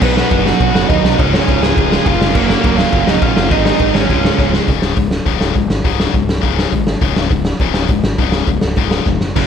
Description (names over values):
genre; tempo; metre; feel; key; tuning
punk rock; 205 BPM; 4/4; straight; Db major; A4 = 435 Hz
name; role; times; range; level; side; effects
lead guitar through a small cranked amp; melody; 0.0-4.5 s; Bb3 to Ab5; -18 LUFS; right 2 dB; overdrive
sludgy distorted guitar; riff; 0.0-4.7, 9.4-9.5 s; Db2 to Cb5; -17 LUFS; right 12 dB; overdrive
tight distorted guitar; riff; 0.0-9.5 s; Db2 to Cb5; -19 LUFS; left 16 dB; distortion
growling picked electric bass; bass; 0.0-9.5 s; Db1 to Eb2; -20 LUFS; equal; overdrive
raw garage drum kit; drums; 0.0-9.4 s; crash cymbal, hi-hat, kick drum, ride cymbal, snare drum; -15 LUFS; equal; none
room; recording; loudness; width
small room reverb; none; -12 LUFS; side -8 dB against mid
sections
0.0-4.7 A section; 4.7-9.5 B section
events
drum fill 4.4, 9.1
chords
0.0 Cb; 1.2 Db; 2.3 Gb; 3.5 Ab; 4.1 Db; 4.7 Db5